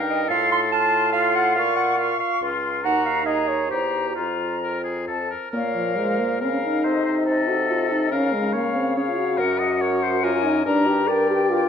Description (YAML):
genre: quick classical-period movement for wind quintet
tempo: 141 BPM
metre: 3/4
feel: rubato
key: Bb minor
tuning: A4 = 440 Hz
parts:
  - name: silver concert flute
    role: melody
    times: 0.0-11.7 s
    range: Eb5 to Db6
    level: -27 LUFS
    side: left 6 dB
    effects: none
  - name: clear oboe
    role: second line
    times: 0.0-11.7 s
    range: F4 to Eb5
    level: -27 LUFS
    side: left 4 dB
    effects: none
  - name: mellow French horn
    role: accompaniment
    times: 0.0-11.7 s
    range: F3 to Bb4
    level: -25 LUFS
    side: left 2 dB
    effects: none
  - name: mellow bassoon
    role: bass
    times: 0.0-11.7 s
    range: Db2 to Db3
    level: -27 LUFS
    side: right 1 dB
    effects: none
  - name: warm clarinet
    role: accompaniment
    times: 0.1-11.7 s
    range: F4 to C6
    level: -25 LUFS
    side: right 5 dB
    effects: none
room: wet recital hall reverb, RT60 1.4 s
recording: minimal, uncompressed stereo recording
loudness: -19 LUFS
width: side -7 dB against mid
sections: 0.0-5.5 A section; 5.5-11.7 B section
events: none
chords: 0.3 F/A; 1.6 Bbm; 2.8 Ebm; 3.7 C7/E; 4.2 Bb5/F; 5.5 Bbm; 6.8 Cdim7; 8.1 Bbm/Db; 9.4 Gb; 10.7 Gm